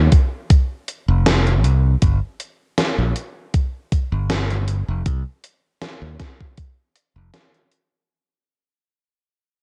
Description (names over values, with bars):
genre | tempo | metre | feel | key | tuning
vaporwave | 79 BPM | 4/4 | swing 54% on 16ths | unclear | A4 = 438 Hz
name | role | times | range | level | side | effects
modern bright fingered electric bass | bass | 0.0-7.3 s | F1 to Eb2 | -20 LUFS | equal | none
electronic kick drum | drums | 0.1-6.7 s | none | -18 LUFS | equal | overdrive
gated 80s digital drum machine | drums | 0.1-7.9 s | hi-hat, snare drum | -24 LUFS | equal | gated reverb, gated reverb snare
room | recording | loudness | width
little or no reverb | cassette tape | -20 LUFS | mono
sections
0.0-8.1 A section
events
fade-out 0.0-8.1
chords
none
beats
0.50 1.26 | 2.02 2.78 3.54 4.30 | 5.06 5.82 6.58 7.34